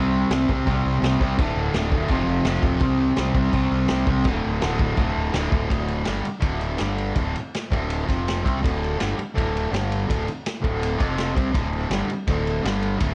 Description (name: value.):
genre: garage rock duo or trio.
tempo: 165 BPM.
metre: 4/4.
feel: straight.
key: unclear.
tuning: A4 = 441 Hz.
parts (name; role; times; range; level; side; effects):
fuzz guitar; riff; 0.0-13.1 s; D2 to C4; -26 LUFS; equal; distortion.
fuzz fingered electric bass; bass; 0.0-13.1 s; D1 to C2; -30 LUFS; equal; overdrive.
vintage drum kit; drums; 0.3-13.1 s; crash cymbal, kick drum, ride cymbal, snare drum; -28 LUFS; equal; vintage 12-bit sampler grit.
room: moderate club reverb, RT60 0.7 s.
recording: cassette tape.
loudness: -23 LUFS.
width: mono.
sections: 0.0-5.7 A section; 5.7-13.1 B section.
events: none.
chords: 0.0 C5; 1.4 D5; 2.1 F5; 2.8 C5; 4.3 D5; 6.8 G5; 7.2 D5; 8.1 F5; 8.4 D5; 9.7 G5; 10.1 D5; 11.0 F5; 11.4 D5; 12.6 G5.